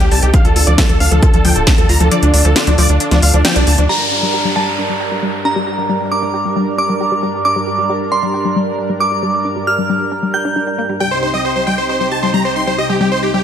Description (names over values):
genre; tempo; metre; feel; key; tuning
uplifting trance; 135 BPM; 4/4; straight; G minor; A4 = 440 Hz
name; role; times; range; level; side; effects
big supersaw lead; melody; 0.0-3.9, 11.0-13.4 s; D4 to C6; -17 LUFS; right 1 dB; sidechain pumping, low-pass filter, digital delay
lush unison pad; sustained chords; 0.0-13.4 s; C2 to Bb4; -21 LUFS; right 2 dB; chorus, sidechain pumping
wide unison pluck; arpeggios; 0.0-13.4 s; F3 to G4; -20 LUFS; left 3 dB; phaser, sidechain pumping, digital delay
tight sequencer bass; bass; 0.0-3.9 s; D1 to Eb2; -13 LUFS; equal; sidechain pumping
techno drum kit; drums; 0.0-4.0 s; crash cymbal, hi-hat, snare drum; -17 LUFS; equal; low-pass filter on hats, low-pass filter on snare, low-pass filter on cymbals, low-pass filter on room
electronic kick drum; drums; 0.3-1.8 s; none; -12 LUFS; equal; none
glassy synth bell; second line; 3.9-10.9 s; A5 to G6; -18 LUFS; right 2 dB; chorus, tape echo
downlifter; sound effects; 3.9-7.5 s; none; -21 LUFS; equal; none
room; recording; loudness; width
moderate scoring stage reverb, RT60 1.8 s; none; -12 LUFS; side -9 dB against mid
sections
0.0-3.9 A section; 3.9-13.4 B section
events
kick drops out 2.1-3.9; band accent 3.5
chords
0.3 Dm; 3.9 Gm; 11.0 Cm